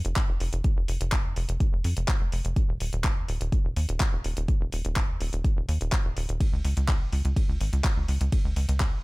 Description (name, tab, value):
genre	progressive house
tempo	125 BPM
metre	4/4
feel	straight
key	unclear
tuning	A4 = 440 Hz
part	tight sequencer bass	bass	0.0-9.0 s	Eb1 to F2	-27 LUFS	equal	sidechain pumping
part	deep house drum kit	drums	0.0-8.9 s	handclaps, hi-hat, ride cymbal	-34 LUFS	equal	sidechain pumping on hats, sidechain pumping on cymbals
part	electronic kick drum	drums	0.2-8.9 s	none	-25 LUFS	equal	none
room	little or no reverb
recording	none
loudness	-24 LUFS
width	side -23 dB against mid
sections	0.0-9.0 A section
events	none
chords	none